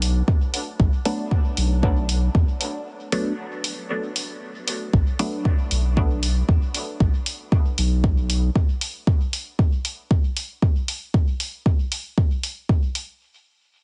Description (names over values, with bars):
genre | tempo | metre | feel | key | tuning
dub techno | 116 BPM | 4/4 | straight | B minor | A4 = 441 Hz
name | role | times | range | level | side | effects
soft dub sub bass | bass | 0.0-8.5 s | B1 to E2 | -23 LUFS | equal | sidechain pumping
electronic hi-hat | drums | 0.0-13.1 s | none | -30 LUFS | equal | studio ambience
electronic kick drum | drums | 0.3-12.8 s | none | -22 LUFS | equal | studio ambience
filtered dub chord stab | stabs | 1.1-5.5 s | F#3 to D4 | -32 LUFS | equal | phaser, sidechain pumping, dub echo
room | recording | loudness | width
little or no reverb | heavily compressed radio sound, multiband compression, nothing above 10.5 kHz | -23 LUFS | mono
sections
0.0-4.9 A section; 4.9-13.2 B section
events
break 2.9-4.9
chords
0.0 Bm7; 4.9 N.C.